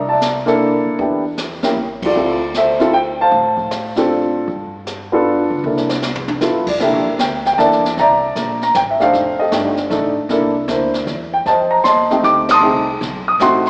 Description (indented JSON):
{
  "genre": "jazz piano trio",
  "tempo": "155 BPM",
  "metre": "3/4",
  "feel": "swing 66% on 8ths",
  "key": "C mixolydian",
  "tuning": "A4 = 440 Hz",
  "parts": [
    { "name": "dark baby grand piano", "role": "melody", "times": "0.0-13.7 s", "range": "A3 to Eb6", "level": "-14 LUFS", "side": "equal", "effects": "none" },
    { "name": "upright bass", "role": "bass", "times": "0.0-13.7 s", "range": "F1 to A2", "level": "-28 LUFS", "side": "equal", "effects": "none" },
    { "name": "jazz brush drum kit", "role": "drums", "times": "0.2-13.7 s", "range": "brushed snare drum, crash cymbal, hi-hat, kick drum, ride cymbal, snare drum, toms", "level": "-24 LUFS", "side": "equal", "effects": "none" }
  ],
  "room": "moderate lush hall reverb, RT60 2.4 s",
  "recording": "live gig heard through the venue's PA, club reverb, small speaker sound",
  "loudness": "-13 LUFS",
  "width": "side -36 dB against mid",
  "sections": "0.0-6.8 A section; 6.8-13.7 A section",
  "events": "band accent 2.0, 12.4; drum fill 5.6-6.4",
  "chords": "0.0 C13; 1.0 Em7; 1.8 Dm/A; 2.2 Dm7; 4.5 G9; 5.6 C13; 6.4 G13; 6.8 C13; 9.1 F13; 10.3 C9; 11.5 F13; 12.6 F#dim7"
}